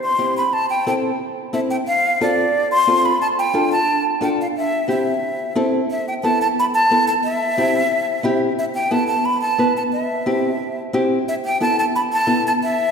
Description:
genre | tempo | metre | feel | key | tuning
latin | 179 BPM | 4/4 | straight | unclear | A4 = 440 Hz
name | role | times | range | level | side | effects
breathy jazz flute | melody | 0.0-12.9 s | D5 to C6 | -18 LUFS | equal | none
nylon-string guitar | accompaniment | 0.2-12.5 s | B3 to B4 | -21 LUFS | left 1 dB | none
room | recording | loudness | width
wet church reverb, RT60 2.9 s | recorded in a church or concert hall | -16 LUFS | side -6 dB against mid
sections
0.0-5.9 A section; 5.9-12.9 B section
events
none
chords
0.0 C; 0.5 Am; 1.9 F; 3.2 Dm; 4.6 C; 5.2 Am; 5.9 Esus4; 7.2 C; 8.6 Esus4; 9.9 C; 11.3 Esus4

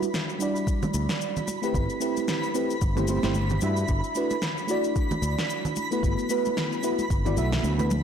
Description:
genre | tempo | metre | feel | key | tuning
sunset chillout | 112 BPM | 4/4 | swing 57% on 16ths | G major | A4 = 438 Hz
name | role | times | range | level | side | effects
mellow FM electric piano | accompaniment | 0.0-7.9 s | G3 to E5 | -27 LUFS | moving between left 2 dB and right 5 dB | chorus, phaser, auto-pan, tape echo
smooth R&B drum kit | drums | 0.0-8.0 s | shaker, snare drum, toms | -32 LUFS | left 1 dB | none
congas | percussion | 0.0-8.0 s | none | -33 LUFS | right 2 dB | none
twinkling granular texture | texture | 0.0-8.0 s | B5 | -34 LUFS | right 1 dB | built-in reverb
electronic kick drum | drums | 0.7-7.2 s | none | -27 LUFS | equal | none
fingered electric bass | bass | 0.9-8.0 s | G1 to G2 | -26 LUFS | equal | transformer saturation
room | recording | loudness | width
moderate concert hall reverb, RT60 2.2 s | blown-out, overdriven recording, overdrive | -24 LUFS | side -8 dB against mid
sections
0.0-8.0 A section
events
none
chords
0.0 Em9; 3.9 Gmaj13 (rootless)

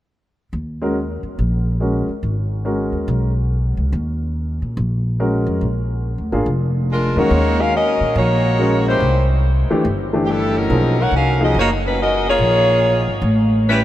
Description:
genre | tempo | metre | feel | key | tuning
jazz, big band swing | 142 BPM | 4/4 | swing 65% on 8ths | Eb minor | A4 = 442 Hz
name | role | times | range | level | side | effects
upright bass | bass | 0.5-13.8 s | F1 to Bb2 | -19 LUFS | equal | none
warm upright piano | accompaniment | 0.8-11.5 s | Eb3 to Bb4 | -22 LUFS | left 1 dB | none
warm saxophone section | melody | 6.9-13.8 s | F#3 to F#5 | -17 LUFS | equal | none
room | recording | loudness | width
moderate cathedral reverb, RT60 6.7 s | in a vast, echoing space | -15 LUFS | side -13 dB against mid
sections
0.5-7.3 A section; 7.3-13.8 B section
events
none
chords
0.5 Ebm7; 2.2 Abm9; 3.9 Ebm7; 5.6 Bb7; 7.3 Ebm7; 9.0 C13; 10.7 Bmaj9; 12.4 Bbm7; 13.2 A

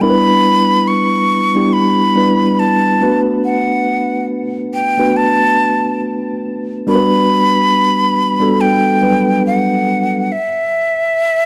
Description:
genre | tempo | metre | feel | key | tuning
R&B | 70 BPM | 4/4 | swing 58% on 16ths | unclear | A4 = 441 Hz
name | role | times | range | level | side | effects
breathy jazz flute | melody | 0.0-11.5 s | E5 to C#6 | -17 LUFS | equal | none
mellow tine electric piano | accompaniment | 0.0-10.3 s | F#3 to B4 | -16 LUFS | equal | none
room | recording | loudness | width
light reverb, small room ambience | dry, gritty hardware recording | -14 LUFS | mono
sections
0.0-11.5 A section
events
none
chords
0.0 Em7; 3.0 Bm7; 6.9 Gmaj7; 10.3 N.C.

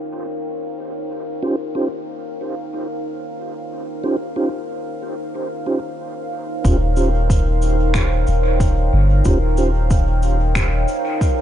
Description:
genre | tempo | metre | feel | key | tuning
ambient dub | 92 BPM | 4/4 | straight | Eb mixolydian | A4 = 440 Hz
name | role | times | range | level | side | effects
deep dark ambient pad | sustained chords | 0.0-11.4 s | Eb4 to G5 | -24 LUFS | equal | chorus, built-in reverb
mellow tonewheel organ | stabs | 1.4-9.7 s | Db4 to C5 | -25 LUFS | right 2 dB | chorus vibrato, stopped rotary speaker, dub echo
soft dub sub bass | bass | 6.6-10.9 s | Eb1 to G1 | -17 LUFS | equal | none
cabasa and finger snaps | drums | 6.6-11.3 s | none | -28 LUFS | equal | dub echo
electronic kick drum | drums | 6.6-11.3 s | none | -18 LUFS | equal | none
room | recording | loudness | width
studio reverb | echo-heavy mix, low-pass filter, nothing above 10.3 kHz | -18 LUFS | side -11 dB against mid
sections
0.0-6.6 A section; 6.6-11.4 B section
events
filter sweep 0.0-6.6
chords
0.0 Eb13

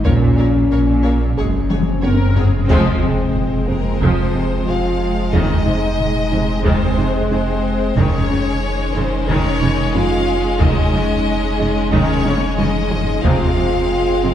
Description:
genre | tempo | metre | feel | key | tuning
cinematic, hybrid orchestral and electronic film score | 91 BPM | 4/4 | straight | F phrygian | A4 = 445 Hz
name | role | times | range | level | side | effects
clear chamber violin section | melody | 0.0-14.3 s | Bb4 to Gb5 | -26 LUFS | left 5 dB | none
clear chamber violin section | second line | 0.0-14.3 s | Ab3 to Db5 | -26 LUFS | left 2 dB | none
mellow French horn section | sustained chords | 0.0-14.3 s | Bb3 to C5 | -22 LUFS | left 1 dB | none
warm sub bass | bass | 0.0-14.3 s | F1 to Bb1 | -23 LUFS | equal | none
taiko ensemble | drums | 0.0-13.9 s | none | -20 LUFS | equal | none
clear symphonic viola section | accompaniment | 0.1-14.3 s | C3 to Bb4 | -25 LUFS | right 1 dB | none
mellow trombone section | sustained chords | 0.1-14.3 s | C3 to Bb3 | -25 LUFS | equal | none
soft round pluck | arpeggios | 0.1-14.3 s | Db3 to Ab4 | -28 LUFS | right 1 dB | none
rich symphonic cello section | bass | 0.1-14.3 s | F2 to Bb2 | -25 LUFS | right 2 dB | none
warm symphonic double bass section | bass | 0.1-14.3 s | F1 to Bb1 | -23 LUFS | right 2 dB | none
swell and impact | sound effects | 1.8-5.3 s | none | -28 LUFS | left 1 dB | none
room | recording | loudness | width
wet scoring stage reverb, RT60 1.6 s | heard from further back in the room | -14 LUFS | side -10 dB against mid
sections
0.0-2.7 A section; 2.7-14.3 B section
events
drum fill 1.7-2.7, 12.2-13.2; swell 1.8-2.7; band accent 2.7-3.3; impact 2.7-5.3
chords
0.1 Bbm; 1.4 Gbsus2; 2.7 Fm; 5.3 Ab/F; 8.0 Dbsus2/F; 13.2 Fm

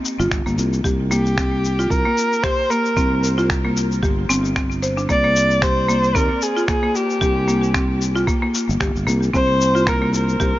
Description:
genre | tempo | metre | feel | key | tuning
organic downtempo | 113 BPM | 4/4 | swing 56% on 16ths | unclear | A4 = 440 Hz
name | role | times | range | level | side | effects
electronic shaker and finger snaps | drums | 0.1-10.5 s | none | -27 LUFS | left 2 dB | none
buzzing marimba with hard mallets | arpeggios | 0.2-10.5 s | Bb3 to C5 | -22 LUFS | left 1 dB | ping-pong delay
sustaining fretless electric bass | bass | 0.2-10.5 s | G1 to Eb2 | -21 LUFS | equal | none
electronic kick drum | drums | 0.3-10.5 s | none | -23 LUFS | equal | none
warm kamancheh | melody | 1.1-10.6 s | G4 to D5 | -21 LUFS | equal | digital delay
room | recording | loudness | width
small room ambience | nothing above 7.4 kHz | -16 LUFS | side -15 dB against mid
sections
0.0-10.6 A section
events
none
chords
0.0 C5; 0.8 Gm/C; 5.1 C5; 9.3 N.C.

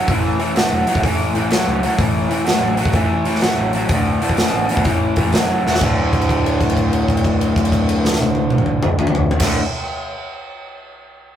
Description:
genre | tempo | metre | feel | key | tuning
blues rock power trio and southern rock | 126 BPM | 4/4 | swing 66% on 8ths | D major | A4 = 440 Hz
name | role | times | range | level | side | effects
raw garage guitar | riff | 0.0-9.6 s | D2 to F#3 | -18 LUFS | equal | overdrive
growling picked electric bass | bass | 0.1-9.6 s | D1 to A2 | -25 LUFS | equal | overdrive
big rock drum kit | drums | 0.1-9.5 s | crash cymbal, hi-hat, kick drum, snare drum, toms | -19 LUFS | equal | none
room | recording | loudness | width
moderate studio reverb, RT60 0.5 s | rough rehearsal-room recording, tube saturation, faint mains hum | -15 LUFS | side -10 dB against mid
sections
0.0-5.8 A section; 5.8-9.6 B section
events
drum fill 5.6; held note 5.8-9.3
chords
0.0 A5; 3.9 D5; 4.9 A5; 5.8 D5

